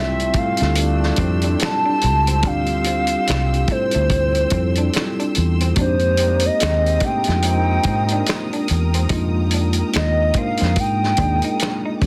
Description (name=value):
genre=R&B, neo-soul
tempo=72 BPM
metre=4/4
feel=swing 58% on 16ths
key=unclear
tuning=A4 = 440 Hz
part: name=hollow clarinet-like synth lead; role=melody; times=0.0-12.0 s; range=C5 to A5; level=-23 LUFS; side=equal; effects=chorus, slapback echo, plate reverb
part: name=mellow tine electric piano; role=accompaniment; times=0.0-12.1 s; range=G3 to Bb4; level=-26 LUFS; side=equal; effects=plate reverb
part: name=warm studio string section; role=sustained chords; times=0.0-12.1 s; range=G3 to E6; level=-35 LUFS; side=equal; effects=none
part: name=warm trombone section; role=stabs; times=0.0-8.5 s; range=C3 to Eb4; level=-31 LUFS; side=equal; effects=plate reverb
part: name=vintage muted fingered electric bass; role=bass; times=0.0-12.1 s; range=C2 to Ab2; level=-22 LUFS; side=equal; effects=none
part: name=warm soul drum kit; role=drums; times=0.2-12.1 s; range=finger snaps, hi-hat, kick drum, snare drum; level=-26 LUFS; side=equal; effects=soft clipping on kick, soft clipping on snare
part: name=electric guitar through a small old amp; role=second line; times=0.4-12.1 s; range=A3 to Eb4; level=-32 LUFS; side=equal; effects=spring reverb
room=light reverb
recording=dense, heavily limited modern master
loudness=-19 LUFS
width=mono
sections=0.0-12.1 A section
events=none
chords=0.0 Dm11; 5.8 Fm11